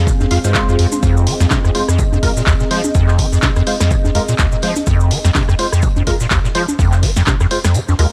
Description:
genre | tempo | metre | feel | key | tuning
acid house | 125 BPM | 4/4 | swing 57% on 16ths | F minor | A4 = 440 Hz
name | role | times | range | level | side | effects
dark analog pad | sustained chords | 0.0-8.1 s | C4 to F5 | -27 LUFS | equal | chorus, sidechain pumping
acid bass, square | riff | 0.0-8.1 s | F1 to F3 | -17 LUFS | equal | tube saturation, ensemble chorus, cassette tape, sidechain pumping
electronic kick drum | drums | 0.1-7.4 s | none | -20 LUFS | equal | small room ambience
open jazz drum kit | drums | 0.1-8.1 s | hi-hat, snare drum, tambourine | -36 LUFS | equal | none
maracas | percussion | 0.1-8.0 s | none | -31 LUFS | equal | none
punchy analog drum machine | drums | 0.2-8.1 s | congas, handclaps, hi-hat, rim click, snare drum | -23 LUFS | equal | small room ambience
percussive organ stab | stabs | 0.3-8.1 s | Ab3 to F5 | -25 LUFS | equal | ensemble chorus, tape echo
room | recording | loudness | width
studio ambience | dry, gritty hardware recording, transformer saturation, cassette tape | -15 LUFS | mono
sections
0.0-8.1 A section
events
kick drops out 7.7-8.1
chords
0.0 Fm

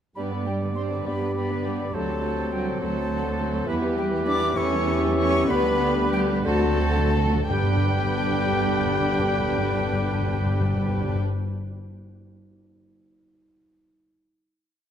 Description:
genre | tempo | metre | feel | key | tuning
quick classical-period movement for symphony orchestra | 56-70 BPM (dotted quarters) | 6/8 | rubato | G major | A4 = 438 Hz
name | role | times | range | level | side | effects
muted studio violin section | melody | 0.2-11.2 s | G4 to G5 | -32 LUFS | left 3 dB | none
bright silver concert flute | second line | 0.2-11.2 s | G5 to D6 | -32 LUFS | left 1 dB | none
muted symphonic violin section | second line | 0.2-11.2 s | A3 to B4 | -35 LUFS | left 1 dB | none
warm clarinet | second line | 0.2-11.2 s | F#4 to A4 | -33 LUFS | right 1 dB | none
warm oboe | second line | 0.2-11.2 s | A4 to D5 | -35 LUFS | right 3 dB | none
mellow bassoon | accompaniment | 0.2-11.2 s | D3 to G3 | -31 LUFS | right 2 dB | none
muted symphonic viola section | accompaniment | 0.2-11.2 s | D3 to D4 | -32 LUFS | right 2 dB | none
warm French horn section | sustained chords | 0.2-11.2 s | A3 to G4 | -31 LUFS | left 6 dB | none
muted chamber cello section | bass | 0.2-11.2 s | G3 to D4 | -31 LUFS | right 1 dB | none
muted chamber double bass section | bass | 0.2-11.2 s | G1 to G2 | -29 LUFS | right 2 dB | none
timpani | percussion | 6.5-11.2 s | G2 to D3 | -27 LUFS | left 2 dB | none
room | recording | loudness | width
moderate scoring stage reverb, RT60 2.0 s | none | -21 LUFS | side -9 dB against mid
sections
0.2-7.5 A section; 7.5-11.6 final chord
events
slowing down 2.8-7.5; timpani fill 6.5-7.5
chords
0.2 G; 1.9 D7; 3.7 Em; 4.6 A7/E; 5.5 G/D; 6.5 D7; 7.5 G

